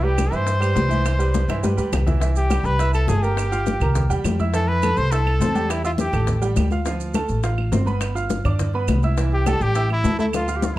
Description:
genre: Afro-Cuban jazz.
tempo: 207 BPM.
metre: 4/4.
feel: straight.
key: C major.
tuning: A4 = 440 Hz.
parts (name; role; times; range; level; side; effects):
clear trumpet; melody; 0.0-6.4, 9.3-10.8 s; E4 to C5; -25 LUFS; equal; none.
breathy concert flute; second line; 0.0-6.4, 9.3-10.8 s; E5 to C6; -32 LUFS; left 4 dB; none.
bright upright piano; accompaniment; 0.0-10.8 s; E3 to F6; -26 LUFS; right 4 dB; none.
upright bass; bass; 0.0-10.8 s; G1 to G2; -21 LUFS; equal; none.
congas; percussion; 0.0-10.8 s; none; -27 LUFS; left 2 dB; none.
bongos; percussion; 0.2-10.7 s; none; -31 LUFS; left 6 dB; none.
claves; percussion; 0.2-10.5 s; none; -36 LUFS; right 7 dB; none.
maracas; percussion; 0.2-10.8 s; none; -39 LUFS; right 10 dB; none.
room: light reverb.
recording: dark, warm production.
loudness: -18 LUFS.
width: side -16 dB against mid.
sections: 0.0-2.2 A section; 2.2-10.8 B section.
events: drum fill 1.3-2.2, 10.3-10.8.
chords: 0.0 Cmaj7; 2.2 C6; 3.4 Gm7; 4.0 C7; 4.5 Fmaj7; 5.7 Fmaj9; 6.3 Dmadd11/A; 6.9 Dm7; 8.0 G6; 9.2 C6; 9.8 A5.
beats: 0.18 0.47 0.77 | 1.06 1.35 1.64 1.93 | 2.22 2.51 2.80 3.09 | 3.38 3.67 3.96 4.25 | 4.54 4.83 5.12 5.41 | 5.70 5.99 6.28 6.57 | 6.86 7.14 7.43 7.72 | 8.01 8.30 8.59 8.88 | 9.17 9.46 9.75 10.04 | 10.33 10.62.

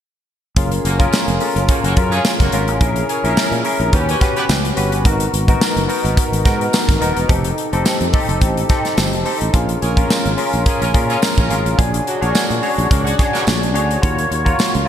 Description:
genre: polished 1980s jazz-funk pop.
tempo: 107 BPM.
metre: 4/4.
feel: swing 54% on 16ths.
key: unclear.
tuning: A4 = 440 Hz.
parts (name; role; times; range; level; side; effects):
barky tine electric piano; accompaniment; 0.6-14.9 s; B3 to C#5; -19 LUFS; left 2 dB; ensemble chorus.
sustaining fretless electric bass; bass; 0.6-14.8 s; D#1 to A#2; -20 LUFS; equal; none.
modern studio drum kit; drums; 0.6-14.9 s; hi-hat, kick drum, snare drum; -18 LUFS; equal; gated reverb.
warm horn section; second line; 0.8-4.4, 9.8-13.4 s; F#3 to D5; -25 LUFS; right 2 dB; none.
tambourine; percussion; 1.1-14.7 s; none; -30 LUFS; right 10 dB; none.
room: moderate lush hall reverb, RT60 1.9 s, studio reverb.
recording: bright 1980s-style digital production.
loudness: -14 LUFS.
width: side -10 dB against mid.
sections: 0.6-14.9 A section.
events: none.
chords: 0.6 F#maj7; 2.8 A#m7b5; 3.9 D#7alt; 5.1 G#m9; 7.3 F7; 9.5 A#m7; 11.8 A#7alt; 14.0 D#m7.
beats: | 0.56 1.13 1.69 2.25 | 2.81 3.37 3.93 4.49 | 5.05 5.61 6.17 6.74 | 7.30 7.86 8.42 8.98 | 9.54 10.10 10.66 11.22 | 11.79 12.35 12.91 13.47 | 14.03 14.59.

